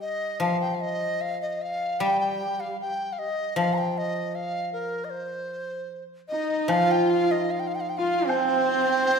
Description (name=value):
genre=chinese traditional, Chinese chamber ensemble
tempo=77 BPM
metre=2/4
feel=rubato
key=unclear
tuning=A4 = 440 Hz
part: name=large dizi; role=melody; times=0.0-9.2 s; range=Bb4 to Bb5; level=-27 LUFS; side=equal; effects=none
part: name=guzheng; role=accompaniment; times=0.0-9.0 s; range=F3 to G3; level=-29 LUFS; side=left 2 dB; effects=none
part: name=bright horsehead fiddle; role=second line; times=6.3-9.2 s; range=C4 to F4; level=-26 LUFS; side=equal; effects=none
part: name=hammered dulcimer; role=second line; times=6.3-9.2 s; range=C4 to F4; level=-28 LUFS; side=right 7 dB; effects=none
part: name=woodblock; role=percussion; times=6.7-8.5 s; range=none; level=-35 LUFS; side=equal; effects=none
room=wet scoring stage reverb, RT60 1.5 s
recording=minimal, uncompressed stereo recording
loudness=-24 LUFS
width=side -6 dB against mid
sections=0.0-6.7 A section; 6.7-9.2 B section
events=none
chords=none